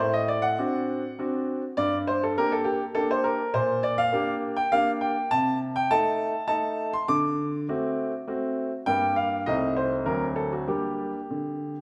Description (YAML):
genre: classical-period piano sonatina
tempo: 101 BPM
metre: 3/4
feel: straight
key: G minor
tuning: A4 = 440 Hz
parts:
  - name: clear baby grand piano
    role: solo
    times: 0.0-11.8 s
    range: C2 to D6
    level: -26 LUFS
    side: equal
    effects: none
room: wet recital hall reverb, RT60 1.6 s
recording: none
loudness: -26 LUFS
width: mono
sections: 0.0-11.8 A section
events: none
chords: 0.0 D7/A; 1.8 Gm; 3.5 Gm/Bb; 5.3 Adim/C; 7.1 D7; 8.9 Gm; 9.5 Adim/C; 10.1 D7; 10.7 Gm